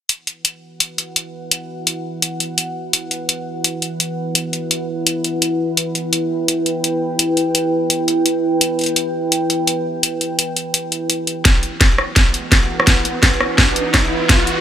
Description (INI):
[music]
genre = half-time drum and bass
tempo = 169 BPM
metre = 4/4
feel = swing 57% on 16ths, half-time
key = E minor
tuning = A4 = 440 Hz
[part]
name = deep dark ambient pad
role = sustained chords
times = 1.0-14.6 s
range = E4 to G5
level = -20 LUFS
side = right 1 dB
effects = chorus, built-in reverb, sidechain pumping
[part]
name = drum and bass drum kit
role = drums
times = 0.1-14.6 s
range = hi-hat, rim click, snare drum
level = -15 LUFS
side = left 1 dB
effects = none
[part]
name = riser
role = sound effects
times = 12.4-14.6 s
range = none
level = -24 LUFS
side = left 1 dB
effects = none
[part]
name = electronic kick drum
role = drums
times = 11.5-14.4 s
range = none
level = -15 LUFS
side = equal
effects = none
[sound]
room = moderate lush hall reverb, RT60 2.5 s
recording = none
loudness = -15 LUFS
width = side -10 dB against mid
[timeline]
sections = 0.1-11.5 A section; 11.5-14.6 B section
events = build-up 11.5-14.6; drum fill 11.5-14.6; riser 12.4-14.6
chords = 0.1 Em; 11.5 E5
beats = | 0.09 0.45 0.80 1.16 | 1.51 1.87 2.22 2.58 | 2.93 3.29 3.64 4.00 | 4.35 4.71 5.06 5.42 | 5.77 6.13 6.48 6.84 | 7.19 7.55 7.90 8.26 | 8.61 8.97 9.32 9.68 | 10.03 10.39 10.74 11.10 | 11.45 11.81 12.16 12.52 | 12.87 13.23 13.58 13.94 | 14.29